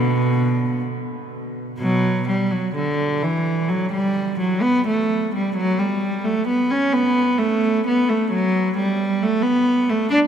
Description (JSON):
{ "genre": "classical, baroque-style suite movement for unaccompanied cello", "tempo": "65 BPM", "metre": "3/4", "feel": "uneven beats, rubato", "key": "B minor", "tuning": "A4 = 440 Hz", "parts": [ { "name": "rich cello", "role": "solo", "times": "0.0-10.2 s", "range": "B2 to D4", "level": "-18 LUFS", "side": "right 1 dB", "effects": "none" } ], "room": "wet cathedral reverb, RT60 6.3 s", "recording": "none", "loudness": "-18 LUFS", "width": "side -8 dB against mid", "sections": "0.0-1.8 A section; 1.8-10.3 B section", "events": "none", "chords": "none", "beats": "0.82 | 1.80 2.75 3.68 | 4.62 5.55 6.47 | 7.38 8.29 9.19 | 10.09" }